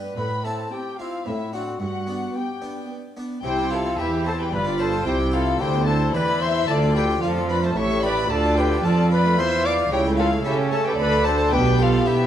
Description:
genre	classical, baroque-style concerto movement with solo episodes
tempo	111 BPM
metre	3/4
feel	straight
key	C major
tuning	A4 = 440 Hz
part	rich chamber violin section	melody	0.0-12.3 s	B4 to D6	-29 LUFS	left 4 dB	none
part	rich chamber violin section	second line	0.0-12.1 s	G4 to B5	-28 LUFS	left 2 dB	none
part	dark chamber viola section	accompaniment	0.0-12.3 s	B3 to A4	-27 LUFS	right 2 dB	none
part	harpsichord	accompaniment	0.0-12.3 s	G2 to A4	-30 LUFS	equal	none
part	warm studio cello section	bass	0.0-12.3 s	G2 to C#4	-26 LUFS	right 2 dB	none
part	dark trumpet	melody	0.2-12.3 s	E4 to D5	-26 LUFS	left 2 dB	none
part	rich chamber double bass section	bass	3.4-12.3 s	G1 to C#3	-25 LUFS	right 1 dB	none
room	moderate recital hall reverb, RT60 1.5 s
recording	dark, warm production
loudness	-19 LUFS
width	side -10 dB against mid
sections	0.0-3.4 A section; 3.4-12.3 B section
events	none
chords	0.2 Am; 1.3 D7/A; 1.8 G; 3.4 C; 4.5 G7; 5.1 C; 6.7 Dm; 7.8 A7; 8.3 Dm; 9.9 A/C#; 11.0 Dm; 11.5 G7/B

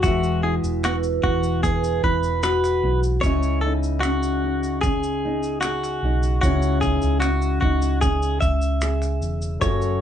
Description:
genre	acoustic pop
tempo	75 BPM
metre	4/4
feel	straight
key	C# minor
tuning	A4 = 441 Hz
part	direct-recorded clean electric guitar	melody	0.0-10.0 s	F#4 to E5	-25 LUFS	equal	none
part	clear concert grand piano	accompaniment	0.0-10.0 s	G#3 to E5	-33 LUFS	left 4 dB	none
part	nylon-string guitar	accompaniment	0.0-10.0 s	F#2 to G#4	-25 LUFS	left 1 dB	none
part	hollow-body short-scale fingered electric bass	bass	0.0-10.0 s	E1 to C#2	-24 LUFS	right 1 dB	none
part	dusty soul sampler-style drum kit	drums	0.0-10.0 s	finger snaps, kick drum, shaker	-26 LUFS	equal	none
room	wet studio reverb, RT60 0.6 s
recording	heard from further back in the room, nothing above 10.3 kHz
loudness	-19 LUFS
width	side -9 dB against mid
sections	0.0-10.0 A section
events	none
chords	0.0 Eadd9; 3.2 C#madd9

